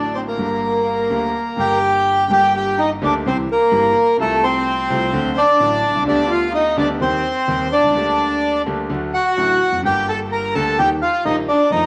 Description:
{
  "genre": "tango",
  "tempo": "127 BPM",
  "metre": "4/4",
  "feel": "rubato",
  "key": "G minor",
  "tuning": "A4 = 439 Hz",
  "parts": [
    { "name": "bandoneon", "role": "melody", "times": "0.0-11.9 s", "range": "A3 to Bb5", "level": "-19 LUFS", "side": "equal", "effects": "none" },
    { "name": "warm studio violin section", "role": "second line", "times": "0.0-11.9 s", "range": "A3 to Bb4", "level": "-27 LUFS", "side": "equal", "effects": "none" },
    { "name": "clear concert grand piano", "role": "accompaniment", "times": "0.0-11.9 s", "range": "G1 to G4", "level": "-26 LUFS", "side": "equal", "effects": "none" }
  ],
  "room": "wet echo chamber reverb, RT60 1.3 s, small room ambience",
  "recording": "vinyl crackle",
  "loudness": "-18 LUFS",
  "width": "mono",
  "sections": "0.0-2.3 A section; 2.3-11.9 A section",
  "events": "none",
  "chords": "0.4 Gm; 3.3 C; 4.2 Fadd9/C; 5.1 D; 6.1 G/D; 7.0 Cm/Eb; 8.0 Gm/D; 8.9 D; 9.8 Gm; 10.8 Eb"
}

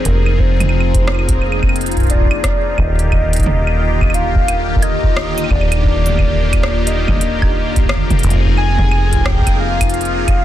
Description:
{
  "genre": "IDM",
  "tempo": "88 BPM",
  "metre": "4/4",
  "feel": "swing 62% on 16ths",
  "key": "F dorian",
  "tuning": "A4 = 439 Hz",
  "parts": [
    { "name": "warbly nostalgic lead", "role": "melody", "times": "0.0-10.4 s", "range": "Bb4 to Ab5", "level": "-22 LUFS", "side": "left 1 dB", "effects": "chorus, digital delay" },
    { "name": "phased analog pad", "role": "sustained chords", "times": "0.0-10.4 s", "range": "D3 to Ab4", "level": "-21 LUFS", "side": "left 1 dB", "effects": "phaser, chorus, sidechain pumping" },
    { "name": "deep acid bass", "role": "bass", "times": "0.0-10.4 s", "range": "Eb1 to F1", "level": "-18 LUFS", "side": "equal", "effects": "tube saturation" },
    { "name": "bubbling stepped-filter texture", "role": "texture", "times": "0.0-10.4 s", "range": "Bb3 to Bb4", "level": "-28 LUFS", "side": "equal", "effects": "chorus, built-in reverb" },
    { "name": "electronic kick drum", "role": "drums", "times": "0.1-10.4 s", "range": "none", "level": "-16 LUFS", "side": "equal", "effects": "none" },
    { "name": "industrial drum kit", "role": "drums", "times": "0.1-10.4 s", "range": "claves, hi-hat, rim click, toms", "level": "-22 LUFS", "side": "right 1 dB", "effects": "soft clipping on snare, ping-pong delay" }
  ],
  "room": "little or no reverb",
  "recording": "dense, heavily limited modern master",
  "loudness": "-12 LUFS",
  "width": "side -12 dB against mid",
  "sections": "0.0-10.4 A section",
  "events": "none",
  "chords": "0.0 Fm7; 2.8 Ebmaj7; 8.2 Fm7"
}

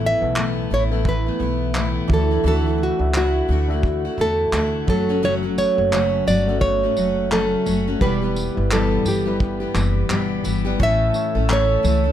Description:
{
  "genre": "acoustic pop",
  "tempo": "86 BPM",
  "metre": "4/4",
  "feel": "swing 60% on 16ths",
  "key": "unclear",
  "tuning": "A4 = 440 Hz",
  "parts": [
    { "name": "overdriven reed electric piano", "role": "accompaniment", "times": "0.0-12.1 s", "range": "G3 to E5", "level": "-29 LUFS", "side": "left 5 dB", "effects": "none" },
    { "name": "picked steel-string acoustic guitar", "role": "accompaniment", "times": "0.0-12.1 s", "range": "E2 to A4", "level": "-24 LUFS", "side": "left 4 dB", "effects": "none" },
    { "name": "fingerpicked steel-string acoustic guitar", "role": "arpeggios", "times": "0.0-12.1 s", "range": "E3 to A4", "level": "-28 LUFS", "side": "right 8 dB", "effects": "none" },
    { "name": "upright bass", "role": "bass", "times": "0.0-12.1 s", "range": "E1 to E2", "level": "-23 LUFS", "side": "equal", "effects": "none" },
    { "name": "nylon-string guitar", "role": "melody", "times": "0.1-12.1 s", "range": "F#4 to E5", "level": "-22 LUFS", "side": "right 2 dB", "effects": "none" },
    { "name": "cloth-damped thuddy drum kit", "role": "drums", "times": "0.4-12.0 s", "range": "handclaps, kick drum, tambourine", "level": "-24 LUFS", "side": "equal", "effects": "none" },
    { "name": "tonewheel organ", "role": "sustained chords", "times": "10.8-12.1 s", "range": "C#5 to E6", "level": "-32 LUFS", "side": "left 1 dB", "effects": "slow rotary speaker" }
  ],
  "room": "little or no reverb",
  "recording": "close, detailed microphones",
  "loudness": "-17 LUFS",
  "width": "side -10 dB against mid",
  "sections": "0.0-10.8 A section; 10.8-12.1 B section",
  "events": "none",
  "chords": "0.0 Asus2; 2.1 Dadd9; 4.9 F#m; 8.0 Em; 10.8 A"
}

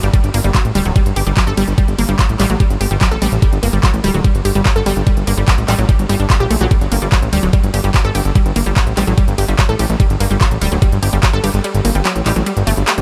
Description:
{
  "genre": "psychedelic trance",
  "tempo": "146 BPM",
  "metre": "4/4",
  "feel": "straight",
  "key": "G harmonic minor",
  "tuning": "A4 = 440 Hz",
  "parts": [
    { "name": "unison pluck", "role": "riff", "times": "0.0-13.0 s", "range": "F#3 to A4", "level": "-22 LUFS", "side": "equal", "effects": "vintage 12-bit sampler grit, sidechain pumping, diffuse ambient delay" },
    { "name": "fat analog bass", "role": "bass", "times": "0.0-13.0 s", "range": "D1 to Bb1", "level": "-18 LUFS", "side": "equal", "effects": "tube saturation" },
    { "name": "big-room dance drum kit", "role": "drums", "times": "0.0-13.0 s", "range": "handclaps, hi-hat, ride cymbal", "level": "-24 LUFS", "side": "equal", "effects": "none" },
    { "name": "electronic kick drum", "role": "drums", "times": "0.1-11.3 s", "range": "none", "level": "-15 LUFS", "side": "equal", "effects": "overdrive" }
  ],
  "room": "light reverb",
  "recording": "none",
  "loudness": "-14 LUFS",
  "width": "mono",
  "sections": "0.0-13.0 A section",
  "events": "kick drops out 11.6-13.0",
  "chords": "0.0 G5"
}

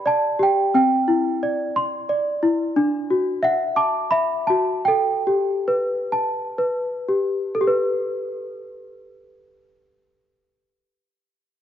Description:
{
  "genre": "children's music",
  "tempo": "56-90 BPM",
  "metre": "3/4",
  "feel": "rubato",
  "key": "G major",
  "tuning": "A4 = 440 Hz",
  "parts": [
    { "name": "small celesta", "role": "melody", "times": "0.0-11.1 s", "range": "C4 to D6", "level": "-19 LUFS", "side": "equal", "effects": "none" }
  ],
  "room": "moderate concert hall reverb, RT60 2.4 s",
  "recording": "dark, warm production, nothing above 7.5 kHz",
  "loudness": "-19 LUFS",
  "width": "side -10 dB against mid",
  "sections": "0.0-7.6 A section; 7.6-11.6 B section",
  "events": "slowing down 2.8-7.6",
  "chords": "0.0 G; 0.7 Cadd9; 2.8 Dadd9; 4.9 Gadd9"
}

